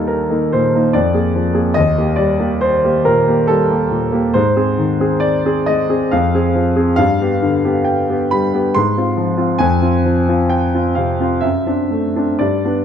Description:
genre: classical, romantic character piece for solo piano.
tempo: 60-72 BPM.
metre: 3/4.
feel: rubato.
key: unclear.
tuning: A4 = 440 Hz.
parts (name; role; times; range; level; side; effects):
clear concert grand piano; solo; 0.0-12.8 s; Eb2 to C6; -13 LUFS; equal; none.
room: light reverb.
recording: close, detailed microphones.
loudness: -13 LUFS.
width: side -8 dB against mid.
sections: 0.0-12.8 A section.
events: none.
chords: 0.0 Eb; 0.9 Bb7/F; 1.8 Eb; 4.4 Ab; 6.1 Fm; 7.0 G; 8.7 Fm/Ab; 9.6 Fm; 11.4 D7/F#.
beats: 0.09 0.94 | 1.77 2.63 3.50 | 4.36 5.24 6.12 | 6.98 7.85 8.74 | 9.61 10.52 11.44 | 12.40.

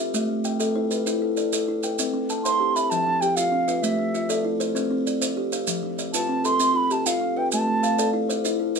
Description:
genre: southern african traditional, mbira-style interlocking cycle.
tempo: 130 BPM (dotted quarters).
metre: 12/8.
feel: straight.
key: unclear.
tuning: A4 = 440 Hz.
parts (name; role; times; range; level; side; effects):
buzzing kalimba; arpeggios; 0.0-8.8 s; F3 to F5; -29 LUFS; right 6 dB; none.
kalimba; arpeggios; 0.0-8.8 s; F3 to A5; -25 LUFS; left 4 dB; none.
maracas; percussion; 0.1-8.8 s; none; -29 LUFS; right 7 dB; none.
baroque flute; melody; 2.4-8.1 s; E5 to C6; -23 LUFS; right 3 dB; none.
room: moderate studio reverb, RT60 0.6 s.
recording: minimal, uncompressed stereo recording.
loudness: -21 LUFS.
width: side -5 dB against mid.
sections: 0.0-2.0 A section; 2.0-8.8 B section.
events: none.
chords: 0.1 Am; 2.0 C; 2.9 F; 3.8 Am; 4.8 C5; 5.7 F; 7.5 Am.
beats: | 0.14 0.60 1.06 1.52 | 1.99 2.45 2.91 3.37 | 3.83 4.29 4.75 5.22 | 5.68 6.14 6.60 7.06 | 7.52 7.98 8.44.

